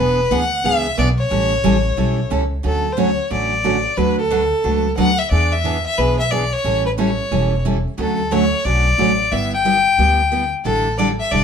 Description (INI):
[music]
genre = country, western swing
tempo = 180 BPM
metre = 4/4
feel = swing 64% on 8ths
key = D major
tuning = A4 = 440 Hz
[part]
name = clear fiddle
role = melody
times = 0.0-11.4 s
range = A4 to G5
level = -18 LUFS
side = left 2 dB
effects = none
[part]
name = picked steel-string acoustic guitar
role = accompaniment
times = 0.0-11.4 s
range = D3 to B4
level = -20 LUFS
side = right 2 dB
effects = none
[part]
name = upright bass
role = bass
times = 0.0-11.4 s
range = E1 to E2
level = -21 LUFS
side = equal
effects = none
[sound]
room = moderate studio reverb, RT60 0.7 s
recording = band playing live in one room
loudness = -15 LUFS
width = side -7 dB against mid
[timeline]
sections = 0.0-2.6 A section; 2.6-11.4 B section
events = none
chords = 0.0 E7; 1.3 A7; 2.6 Dmaj7; 4.0 Bm7/D; 5.3 E7; 6.6 A7; 8.0 Dmaj7; 9.3 G6; 10.7 A7sus4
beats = 0.31 0.64 0.97 | 1.31 1.64 1.97 2.31 | 2.64 2.98 3.31 3.64 | 3.98 4.31 4.64 4.98 | 5.31 5.65 5.98 6.31 | 6.65 6.98 7.31 7.65 | 7.98 8.31 8.65 8.98 | 9.32 9.65 9.98 10.32 | 10.65 10.98 11.32